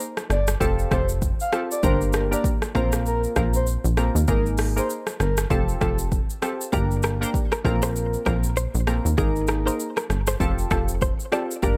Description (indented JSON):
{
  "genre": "afrobeats",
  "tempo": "98 BPM",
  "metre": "4/4",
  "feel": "swing 58% on 16ths",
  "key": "unclear",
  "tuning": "A4 = 439 Hz",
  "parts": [
    { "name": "glassy digital keys", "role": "accompaniment", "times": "0.0-11.8 s", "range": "Bb3 to Bb4", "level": "-30 LUFS", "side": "equal", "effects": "chorus" },
    { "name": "afro-pop drum kit", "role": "drums", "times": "0.0-11.8 s", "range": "hi-hat, kick drum, rim click, shaker", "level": "-28 LUFS", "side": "equal", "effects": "none" },
    { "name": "breathy flute-like synth lead", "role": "melody", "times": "0.3-6.0 s", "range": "A4 to F5", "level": "-32 LUFS", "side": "equal", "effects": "chorus, tape echo" },
    { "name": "plucky analog bass", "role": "bass", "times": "0.3-11.8 s", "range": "F1 to Eb2", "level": "-26 LUFS", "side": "equal", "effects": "none" },
    { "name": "direct-recorded clean electric guitar", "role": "riff", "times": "6.7-11.7 s", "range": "G4 to D5", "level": "-32 LUFS", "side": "equal", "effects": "tape echo" }
  ],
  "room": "digital ambience",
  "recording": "none",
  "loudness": "-23 LUFS",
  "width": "mono",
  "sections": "0.0-11.8 A section",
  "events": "none",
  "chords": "0.0 N.C.; 0.6 Fadd9; 1.8 Gm; 2.8 Bbsus2; 4.3 Absus2; 5.5 Fadd9; 6.7 Gm; 7.6 Bbsus2; 9.2 Absus2; 10.4 Fadd9"
}